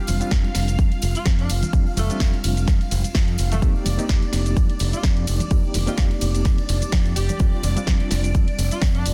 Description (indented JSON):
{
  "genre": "filtered disco house",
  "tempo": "127 BPM",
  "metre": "4/4",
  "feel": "swing 55% on 16ths",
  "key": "unclear",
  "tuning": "A4 = 440 Hz",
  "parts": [
    { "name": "warm horn section", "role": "melody", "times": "0.0-9.0 s", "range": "A3 to G4", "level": "-36 LUFS", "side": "equal", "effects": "sidechain pumping, digital delay" },
    { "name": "reed electric piano", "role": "accompaniment", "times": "0.0-9.1 s", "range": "G3 to G4", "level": "-32 LUFS", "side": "equal", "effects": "fast tremolo, phaser, sidechain pumping" },
    { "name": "string machine, full ensemble", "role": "sustained chords", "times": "0.0-9.1 s", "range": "D5 to F5", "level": "-36 LUFS", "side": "equal", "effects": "ensemble chorus, sidechain pumping" },
    { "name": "modern bright fingered electric bass", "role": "bass", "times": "0.1-9.1 s", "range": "F1 to F2", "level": "-26 LUFS", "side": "equal", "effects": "sidechain pumping" },
    { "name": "house drum kit", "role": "drums", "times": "0.1-9.1 s", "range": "hi-hat, ride cymbal, shaker, snare drum", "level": "-32 LUFS", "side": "equal", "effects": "sidechain pumping on hats, sidechain pumping on perc, sidechain pumping on cymbals" },
    { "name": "tambourine and congas", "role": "percussion", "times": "0.1-9.1 s", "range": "none", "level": "-36 LUFS", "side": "equal", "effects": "sidechain pumping on perc" },
    { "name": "electronic kick drum", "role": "drums", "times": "0.3-8.9 s", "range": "none", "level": "-22 LUFS", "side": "equal", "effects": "none" }
  ],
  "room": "digital ambience",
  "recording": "dense, heavily limited modern master",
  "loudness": "-21 LUFS",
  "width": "mono",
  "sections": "0.0-9.1 A section",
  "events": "none",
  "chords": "0.0 Fsus2; 3.6 F7sus4; 7.2 Fsus2"
}